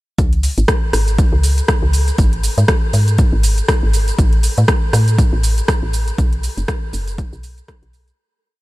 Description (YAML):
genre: afro house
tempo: 120 BPM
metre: 4/4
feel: swing 57% on 16ths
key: unclear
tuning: A4 = 440 Hz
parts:
  - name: woody FM bass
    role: bass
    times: 0.2-8.1 s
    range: F#1 to A2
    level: -15 LUFS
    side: equal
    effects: sidechain pumping
  - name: deep house drum kit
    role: drums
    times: 0.2-8.2 s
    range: hi-hat, rim click, shaker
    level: -21 LUFS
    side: equal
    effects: overdrive, studio reverb
  - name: electronic kick drum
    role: drums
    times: 0.2-7.8 s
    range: none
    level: -16 LUFS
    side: equal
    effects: overdrive, studio reverb
room: little or no reverb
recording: none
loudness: -13 LUFS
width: side -19 dB against mid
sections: 0.2-8.2 drop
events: drop 0.2-8.2; fade-out 5.5-8.2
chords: none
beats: | 0.18 0.68 1.18 1.68 | 2.18 2.68 3.18 3.68 | 4.18 4.68 5.18 5.68 | 6.18 6.68 7.18 7.68